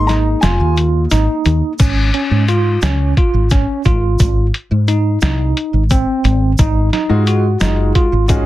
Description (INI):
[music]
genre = progressive instrumental, band music in an uneven meter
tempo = 176 BPM (eighths)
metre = 7/8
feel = straight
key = Ab major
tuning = A4 = 442 Hz
[part]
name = dark grand piano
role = accompaniment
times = 0.0-1.8, 7.1-8.5 s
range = Ab3 to Bb5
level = -20 LUFS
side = left 3 dB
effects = none
[part]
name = bell-like tine electric piano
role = arpeggios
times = 0.0-8.5 s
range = C4 to Gb4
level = -18 LUFS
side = right 2 dB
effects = medium stereo tremolo
[part]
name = woody fretless electric bass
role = bass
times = 0.0-8.4 s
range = F1 to Ab2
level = -14 LUFS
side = equal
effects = ensemble chorus
[part]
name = lo-fi sampler-style drum kit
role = drums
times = 0.1-8.5 s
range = crash cymbal, hi-hat, kick drum, snare drum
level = -16 LUFS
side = equal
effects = none
[part]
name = tube shaker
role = percussion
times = 0.1-8.5 s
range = none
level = -31 LUFS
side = right 6 dB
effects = none
[sound]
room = light reverb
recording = dense, heavily limited modern master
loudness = -12 LUFS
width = side -15 dB against mid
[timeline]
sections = 0.0-1.8 A section; 1.8-8.5 B section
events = grand piano solo 0.0-1.8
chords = 0.0 Absus2; 1.8 Db/Ab; 4.2 Ab; 6.6 Ebmadd9